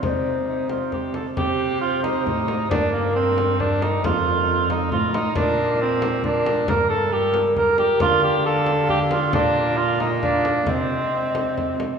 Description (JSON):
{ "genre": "classical, renaissance-style consort dance", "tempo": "135 BPM", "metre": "3/4", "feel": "straight", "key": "C dorian", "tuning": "A4 = 440 Hz", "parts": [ { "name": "baroque flute", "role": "melody", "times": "0.0-11.8 s", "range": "A4 to F5", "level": "-25 LUFS", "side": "left 2 dB", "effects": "none" }, { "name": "mellow cor anglais", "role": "second line", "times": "0.0-11.8 s", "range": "Bb3 to Bb4", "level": "-22 LUFS", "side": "right 3 dB", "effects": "none" }, { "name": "rich cello", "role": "bass", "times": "0.0-11.8 s", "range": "F2 to D3", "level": "-26 LUFS", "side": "right 1 dB", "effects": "none" }, { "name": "frame drum", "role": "percussion", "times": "0.0-12.0 s", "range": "none", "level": "-28 LUFS", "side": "left 2 dB", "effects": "none" } ], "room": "wet church reverb, RT60 3.4 s", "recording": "studio ambience", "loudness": "-18 LUFS", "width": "side -6 dB against mid", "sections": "0.0-1.4 A section; 1.4-12.0 A section", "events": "none", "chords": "0.0 Cm; 2.7 Gm; 4.0 F; 5.4 Bb; 6.7 Gm; 8.0 Dm; 9.3 Bb; 10.7 Cm" }